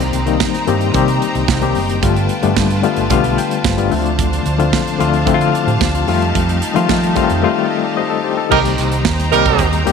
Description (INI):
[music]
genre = disco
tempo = 111 BPM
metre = 4/4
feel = straight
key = C dorian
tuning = A4 = 440 Hz
[part]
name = barky reed electric piano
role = accompaniment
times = 0.0-9.9 s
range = D3 to G5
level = -16 LUFS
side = left 10 dB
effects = overdrive, fast tremolo
[part]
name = clear symphonic string section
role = sustained chords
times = 0.0-9.9 s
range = D4 to Bb5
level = -22 LUFS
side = right 1 dB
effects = none
[part]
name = overdriven fingered electric bass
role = bass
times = 0.0-9.9 s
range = F#1 to F3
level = -19 LUFS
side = right 2 dB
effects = none
[part]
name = modern studio drum kit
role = drums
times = 0.0-9.9 s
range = crash cymbal, hi-hat, kick drum, snare drum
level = -20 LUFS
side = right 6 dB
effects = none
[part]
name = warm horn section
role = stabs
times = 8.5-9.7 s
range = G3 to Bb4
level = -16 LUFS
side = right 14 dB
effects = none
[sound]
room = light reverb, small room ambience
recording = 1960s-style stereo with parts hard left and right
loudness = -13 LUFS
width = side -6 dB against mid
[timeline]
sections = 0.0-8.5 A section; 8.5-9.9 B section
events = reed electric piano fill 3.1-4.2, 7.7-8.5; break 7.4-8.5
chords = 0.0 Cm7; 2.0 G9; 3.9 Dm7; 6.1 F9; 8.5 Cm7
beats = 0.40 0.94 1.49 | 2.03 2.57 3.11 3.65 | 4.19 4.73 5.27 5.81 | 6.35 6.89 7.43 7.97 | 8.51 9.05 9.59